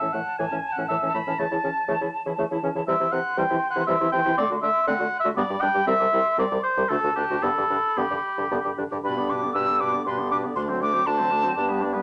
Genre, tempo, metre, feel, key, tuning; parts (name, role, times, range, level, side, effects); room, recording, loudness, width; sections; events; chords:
quick classical-period movement for wind quintet; 119 BPM; 3/4; straight; G major; A4 = 439 Hz
hollow concert flute; melody; 0.0-11.8 s; A5 to E6; -30 LUFS; equal
warm oboe; second line; 0.0-12.0 s; G4 to B5; -27 LUFS; equal
bright clarinet; accompaniment; 0.0-12.0 s; E3 to G4; -35 LUFS; equal
dark French horn; accompaniment; 0.0-12.0 s; B2 to B3; -35 LUFS; equal
warm bassoon; bass; 0.0-12.0 s; C2 to D3; -30 LUFS; equal
moderate studio reverb, RT60 0.5 s; nothing above 10.9 kHz; -24 LUFS; mono
0.0-9.0 A section; 9.0-12.0 B section
0.0 A; 1.4 A/C#; 2.9 C; 4.4 D7; 5.4 G; 5.9 C; 6.9 D; 7.4 G; 10.6 D7